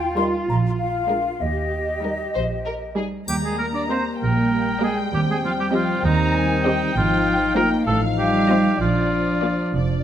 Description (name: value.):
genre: cinematic, playful, whimsical film cue.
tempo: 65 BPM (dotted quarters).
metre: 6/8.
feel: straight.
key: Eb major.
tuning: A4 = 440 Hz.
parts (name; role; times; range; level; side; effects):
mellow flute section; second line; 0.0-3.0 s; Eb5 to C6; -25 LUFS; left 3 dB; none.
muted chamber cello section; bass; 0.0-9.7 s; Eb3 to G4; -25 LUFS; right 3 dB; none.
muted symphonic double bass section; bass; 0.0-10.0 s; F1 to Eb2; -25 LUFS; right 3 dB; none.
muted chamber violin section; melody; 0.2-9.7 s; Ab4 to Eb5; -32 LUFS; left 5 dB; none.
muted studio violin section; second line; 0.2-10.0 s; D4 to Bb5; -28 LUFS; left 2 dB; none.
muted chamber viola section; accompaniment; 0.2-9.7 s; G3 to G4; -27 LUFS; right 1 dB; none.
warm oboe; second line; 3.3-9.7 s; Eb4 to D5; -24 LUFS; right 1 dB; none.
dark French horn section; sustained chords; 3.3-10.0 s; F3 to Eb4; -25 LUFS; left 5 dB; none.
triangle; percussion; 3.3-4.5 s; none; -32 LUFS; left 2 dB; none.
room: moderate scoring stage reverb, RT60 1.9 s.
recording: close, detailed microphones.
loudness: -19 LUFS.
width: side -10 dB against mid.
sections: 0.0-3.3 A section; 3.3-10.0 A section.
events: none.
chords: 0.5 Bb7; 1.4 Eb; 5.1 Cm/Eb; 7.0 Fm7/Ab; 7.9 F7/A; 8.8 Bb.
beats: 0.48 | 1.41 2.35 | 3.28 4.21 | 5.12 6.04 | 6.95 7.87 | 8.80 9.74.